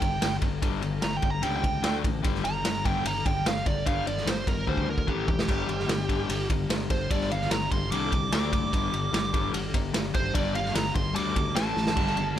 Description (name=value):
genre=hard rock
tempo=148 BPM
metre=4/4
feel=straight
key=G minor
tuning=A4 = 439 Hz
part: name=bluesy overdriven lead guitar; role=melody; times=0.0-12.4 s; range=G4 to D6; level=-31 LUFS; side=right 3 dB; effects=distortion, digital delay
part: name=overdriven semi-hollow guitar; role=riff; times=0.0-12.4 s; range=G2 to D4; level=-31 LUFS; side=left 9 dB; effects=none
part: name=modern bright fingered electric bass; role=bass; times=0.0-12.4 s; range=E1 to D2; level=-33 LUFS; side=equal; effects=none
part: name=raw garage drum kit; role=drums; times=0.0-12.3 s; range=crash cymbal, kick drum, ride cymbal, snare drum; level=-28 LUFS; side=right 1 dB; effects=none
part: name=mellow tonewheel organ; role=sustained chords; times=5.5-12.4 s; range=G3 to D5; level=-39 LUFS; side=right 4 dB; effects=slow rotary speaker
part: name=sludgy distorted guitar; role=riff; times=12.0-12.4 s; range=G2 to G3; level=-32 LUFS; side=right 12 dB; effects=overdrive
room=small room reverb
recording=none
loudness=-24 LUFS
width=side -11 dB against mid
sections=0.0-12.4 A section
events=lead electric guitar solo 0.0-12.4; drum fill 4.7-5.5, 11.8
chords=0.0 G5; 1.8 D5; 2.2 Gm; 5.1 A5; 5.5 G5; 8.3 D5; 8.7 G5; 11.6 A5